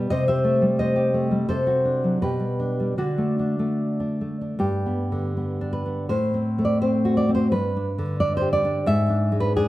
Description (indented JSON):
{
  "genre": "romantic piece for solo classical guitar",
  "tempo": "71-91 BPM",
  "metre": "2/4",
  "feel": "rubato",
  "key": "G major",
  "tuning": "A4 = 439 Hz",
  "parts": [
    { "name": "nylon-string guitar", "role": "solo", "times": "0.0-9.7 s", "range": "G2 to E5", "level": "-20 LUFS", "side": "equal", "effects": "none" }
  ],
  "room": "moderate recital hall reverb, RT60 1.6 s",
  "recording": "none",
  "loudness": "-20 LUFS",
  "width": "side -16 dB against mid",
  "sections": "0.0-4.6 A section; 4.6-9.7 B section",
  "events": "none",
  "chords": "0.1 Am7b5/C; 1.5 D7/C; 2.2 G/B; 3.0 D; 4.6 G; 6.1 F#dim/A; 7.5 G; 8.9 E7/G#",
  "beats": "| 0.10 0.78 | 1.48 2.21 | 2.98 3.79 | 4.62 5.38 | 6.11 6.82 | 7.53 8.20 | 8.88 9.55"
}